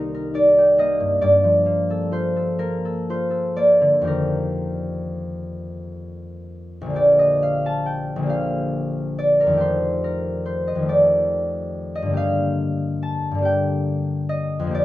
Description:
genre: classical, solo harp piece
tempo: 40-48 BPM (dotted quarters)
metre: 6/8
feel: rubato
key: Bb major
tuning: A4 = 437 Hz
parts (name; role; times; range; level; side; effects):
- concert harp; solo; 0.0-14.8 s; Bb1 to A5; -18 LUFS; equal; none
room: light reverb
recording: close, detailed microphones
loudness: -18 LUFS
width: side -15 dB against mid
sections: 0.0-7.0 A section; 7.0-14.8 B section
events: none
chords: 0.0 Cm7; 1.2 Gm11; 4.0 F9sus4; 7.0 Bb6; 9.6 F13; 12.2 Gm7

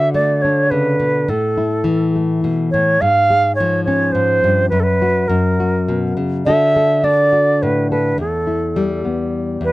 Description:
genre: acoustic folk duo or small band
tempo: 104 BPM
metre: 3/4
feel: straight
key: unclear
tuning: A4 = 435 Hz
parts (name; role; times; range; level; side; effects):
- bright reedy alto flute; melody; 0.0-9.7 s; A4 to E#5; -16 LUFS; right 1 dB; none
- nylon-string guitar; accompaniment; 0.0-9.7 s; E2 to A4; -17 LUFS; left 1 dB; none
room: little or no reverb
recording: dry, close 1970s-style studio recording, tape saturation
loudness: -14 LUFS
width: side -18 dB against mid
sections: 0.0-9.7 A section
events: none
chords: 0.0 D; 1.3 A5; 3.0 C#/G#; 4.7 N.C.; 5.3 F#; 6.5 Dadd9; 8.2 Em

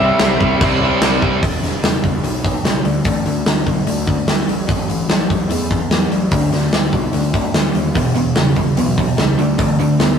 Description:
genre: classic rock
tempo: 147 BPM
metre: 4/4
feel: straight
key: unclear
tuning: A4 = 440 Hz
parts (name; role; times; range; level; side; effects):
- lightly driven lead guitar; melody; 0.0-1.0 s; E5; -19 LUFS; equal; none
- crunchy overdriven guitar; riff; 0.0-10.2 s; E2 to C4; -22 LUFS; left 6 dB; none
- distorted electric guitar; riff; 0.0-1.4, 7.9-10.2 s; E2 to C4; -17 LUFS; right 2 dB; distortion
- fuzz picked electric bass; bass; 0.0-10.1 s; E1 to E2; -21 LUFS; right 1 dB; overdrive
- big rock drum kit; drums; 0.2-10.1 s; crash cymbal, hi-hat, kick drum, snare drum; -17 LUFS; right 1 dB; none
room: light reverb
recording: rough rehearsal-room recording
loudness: -14 LUFS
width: side -7 dB against mid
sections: 0.0-1.4 A section; 1.4-10.2 B section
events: none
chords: 0.0 C; 1.4 E5; 2.8 D5; 4.5 A5; 6.3 D5; 8.0 E5; 9.4 D5

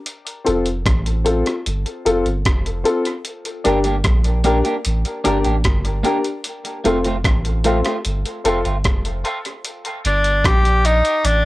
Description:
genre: dub reggae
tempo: 75 BPM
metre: 4/4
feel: straight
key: G minor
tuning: A4 = 440 Hz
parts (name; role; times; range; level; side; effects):
- breakbeat sampler-style drum kit; drums; 0.1-11.4 s; hi-hat, kick drum, rim click; -21 LUFS; equal; cassette tape
- dark upright piano; stabs; 0.4-9.4 s; C4 to Bb4; -21 LUFS; left 2 dB; high-pass filter, cassette tape, dub echo, plate reverb
- soft dub sub bass; bass; 0.5-11.4 s; F1 to Bb1; -20 LUFS; equal; none
- electric guitar at the edge of break-up; accompaniment; 3.6-11.2 s; A3 to G4; -24 LUFS; right 2 dB; high-pass filter, cassette tape, dub echo, plate reverb
- bright tenor saxophone; melody; 10.1-11.4 s; D4 to G4; -16 LUFS; left 1 dB; cassette tape, dub echo, plate reverb
room: light reverb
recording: home recording on cassette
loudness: -16 LUFS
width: side -18 dB against mid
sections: 0.0-9.6 A section; 9.6-11.4 B section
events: break 0.0-3.3; filter sweep 6.4-11.4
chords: 0.1 F; 3.3 Gm; 6.4 F; 9.6 Gm

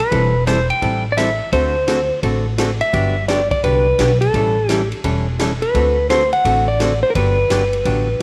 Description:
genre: country, western swing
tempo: 171 BPM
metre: 4/4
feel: swing 64% on 8ths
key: G major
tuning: A4 = 437 Hz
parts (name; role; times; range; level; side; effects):
- clean lap steel guitar; melody; 0.0-8.2 s; A4 to G5; -20 LUFS; equal; slapback echo
- swinging big-band drum kit; drums; 0.0-8.0 s; hi-hat, kick drum, ride cymbal, snare drum; -29 LUFS; equal; none
- archtop guitar, miked and amplified; accompaniment; 0.1-8.1 s; D3 to A4; -24 LUFS; equal; none
- upright bass; bass; 0.1-8.2 s; E1 to D2; -22 LUFS; equal; none
room: light reverb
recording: none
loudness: -17 LUFS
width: mono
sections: 0.0-8.2 A section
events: none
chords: 0.1 Am7/E; 1.5 D7; 2.9 Gmaj7; 4.3 A7; 5.7 D7; 7.2 Gmaj7

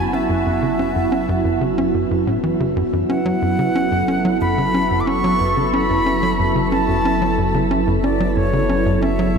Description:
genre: ambient, sequencer-driven space music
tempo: 91 BPM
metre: 4/4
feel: straight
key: F# minor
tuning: A4 = 440 Hz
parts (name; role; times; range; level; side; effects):
- breathy bright concert flute; melody; 0.0-9.4 s; C#5 to D6; -22 LUFS; equal; shimmer reverb, analog delay
- sweeping resonant pad; sustained chords; 0.0-9.4 s; F#3 to A4; -19 LUFS; right 2 dB; chorus, shimmer reverb
- tight sequencer bass; riff; 0.0-9.4 s; F#2 to C#4; -21 LUFS; equal; analog delay
- warm sub bass; bass; 0.0-9.4 s; F#1; -28 LUFS; equal; none
room: wet huge ambient reverb, RT60 7.4 s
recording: in a vast, echoing space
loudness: -16 LUFS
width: side -6 dB against mid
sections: 0.0-9.4 A section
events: fade-in on sub bass 0.0-9.4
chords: 0.0 F#m7

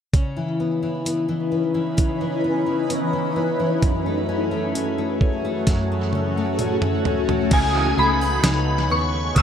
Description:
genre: dream pop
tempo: 65 BPM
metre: 4/4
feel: straight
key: unclear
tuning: A4 = 440 Hz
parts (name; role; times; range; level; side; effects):
- shimmering ambient pad; sustained chords; 0.9-9.4 s; E3 to C#6; -25 LUFS; equal; chorus, built-in reverb, phaser
- fingerpicked twelve-string acoustic guitar; arpeggios; 0.1-9.4 s; F#2 to D#4; -23 LUFS; left 2 dB; lush chorus, tape echo
- dusty soul sampler-style drum kit; drums; 0.1-9.4 s; crash cymbal, hi-hat, kick drum, snare drum, toms; -21 LUFS; right 1 dB; none
- shimmering bell with halo; melody; 7.5-9.4 s; G#5 to E6; -22 LUFS; left 2 dB; ensemble chorus, tape echo
- electric guitar at the edge of break-up; accompaniment; 7.5-9.4 s; C#3 to G#4; -26 LUFS; right 2 dB; tremolo, ensemble chorus, tape echo
- vintage muted picked electric bass; bass; 7.5-9.4 s; C#2 to D#2; -23 LUFS; right 1 dB; none
- glockenspiel with brass mallets; texture; 8.0-9.4 s; G#6; -34 LUFS; left 1 dB; tape echo
room: moderate spring reverb, RT60 2.8 s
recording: echo-heavy mix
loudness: -19 LUFS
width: side -8 dB against mid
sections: 0.1-7.5 A section; 7.5-9.4 B section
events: drum fill 5.7-7.5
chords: 0.1 C#m9; 3.8 F#m9; 7.5 C#m9

